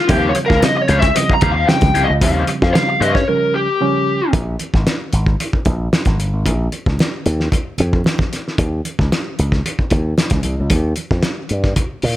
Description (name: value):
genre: funk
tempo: 113 BPM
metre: 4/4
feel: straight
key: Bb dorian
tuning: A4 = 440 Hz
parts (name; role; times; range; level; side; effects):
- lead guitar through a small cranked amp; melody; 0.0-4.3 s; G4 to Bb5; -17 LUFS; left 1 dB; overdrive
- raw garage guitar; accompaniment; 0.1-3.2 s; Db4 to F5; -21 LUFS; left 5 dB; wah, overdrive
- bright reed electric piano; stabs; 0.1-4.2 s; Db3 to Db4; -21 LUFS; right 4 dB; overdrive
- slap bass with an envelope filter; bass; 0.1-12.2 s; G1 to Bb2; -17 LUFS; equal; none
- cloth-damped thuddy drum kit; drums; 0.1-12.2 s; hi-hat, kick drum, snare drum; -18 LUFS; equal; none
- congas; percussion; 0.1-12.2 s; none; -27 LUFS; right 3 dB; none
room: small room reverb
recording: none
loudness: -14 LUFS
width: side -14 dB against mid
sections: 0.0-4.3 A section; 4.3-12.2 B section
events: lead electric guitar solo 0.0-4.3; silent gap 3.3-4.3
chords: 0.1 Eb13; 4.3 Bb7(no3); 8.6 Eb7